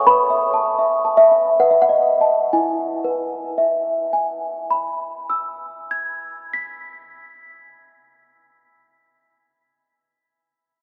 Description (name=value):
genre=classical, lullaby for celesta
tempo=60-88 BPM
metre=3/4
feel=straight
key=E major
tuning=A4 = 440 Hz
part: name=small celesta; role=solo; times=0.0-10.8 s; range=E4 to B6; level=-19 LUFS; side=equal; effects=none
room=wet cathedral reverb, RT60 5.2 s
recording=in a vast, echoing space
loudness=-19 LUFS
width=mono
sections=0.0-2.5 A section; 2.5-8.5 B section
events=slowing down 0.0-2.5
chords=0.1 B7sus4; 1.6 B7; 2.5 E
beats=| 0.07 0.79 1.60 | 2.53 3.54 4.54 | 5.55 6.55 7.55